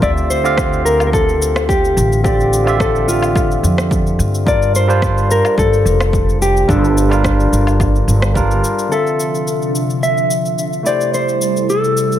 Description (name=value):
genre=sunset chillout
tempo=108 BPM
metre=4/4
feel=straight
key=D minor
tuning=A4 = 440 Hz
part: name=mellow electric guitar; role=melody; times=0.0-12.2 s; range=D4 to E5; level=-17 LUFS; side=equal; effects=spring reverb, ping-pong delay
part: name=barky tine electric piano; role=accompaniment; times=0.0-12.2 s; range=D3 to F5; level=-20 LUFS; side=moving between left 3 dB and right 3 dB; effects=auto-pan, ping-pong delay
part: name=upright bass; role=bass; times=0.0-8.6 s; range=F1 to G2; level=-16 LUFS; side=equal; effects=none
part: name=electronic kick drum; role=drums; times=0.0-8.5 s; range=none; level=-19 LUFS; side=equal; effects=overdrive, studio reverb
part: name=electronic shaker, rim click and woodblock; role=drums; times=0.0-12.2 s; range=none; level=-24 LUFS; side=left 1 dB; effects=overdrive, studio reverb
part: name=airy breathy pad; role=sustained chords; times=9.2-12.2 s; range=C3 to E5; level=-21 LUFS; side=left 2 dB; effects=chorus, phaser
room=light reverb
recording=faint mains hum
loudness=-12 LUFS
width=side -11 dB against mid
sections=0.0-8.9 A section; 8.9-12.2 B section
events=none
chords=0.0 Dm11; 4.5 Gm7; 8.9 Dm9; 10.9 Am7